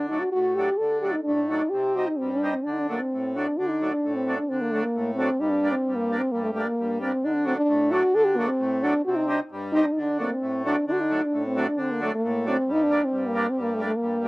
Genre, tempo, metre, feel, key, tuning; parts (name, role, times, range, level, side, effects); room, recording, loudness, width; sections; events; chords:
klezmer; 132 BPM; 2/4; straight; D phrygian dominant; A4 = 440 Hz
warm French horn; melody; 0.0-14.3 s; A3 to A4; -23 LUFS; equal
accordion; accompaniment; 0.0-14.3 s; G2 to Eb4; -29 LUFS; equal; slapback echo
little or no reverb; recorded outdoors, with no room sound; -22 LUFS; side -23 dB against mid
0.0-3.6 A section; 3.6-10.9 B section; 10.9-14.3 B section
0.0 D; 1.7 Cm; 2.7 D; 5.4 Gm; 7.2 D; 9.0 Cm; 10.0 D; 12.7 Gm